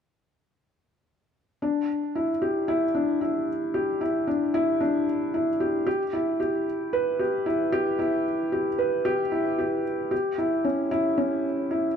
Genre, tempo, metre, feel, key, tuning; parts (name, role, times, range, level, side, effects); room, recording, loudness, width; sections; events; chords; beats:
electronica; 113 BPM; 4/4; straight; E minor; A4 = 440 Hz
felt-muted upright piano; solo; 1.6-12.0 s; C#4 to B4; -23 LUFS; equal
moderate echo chamber reverb, RT60 2.0 s; -23 LUFS; side -7 dB against mid
1.6-12.0 A section
| 1.62 2.15 2.68 3.21 | 3.74 4.27 4.80 5.34 | 5.87 6.40 6.93 7.46 | 7.99 8.52 9.05 9.58 | 10.12 10.65 11.18 11.71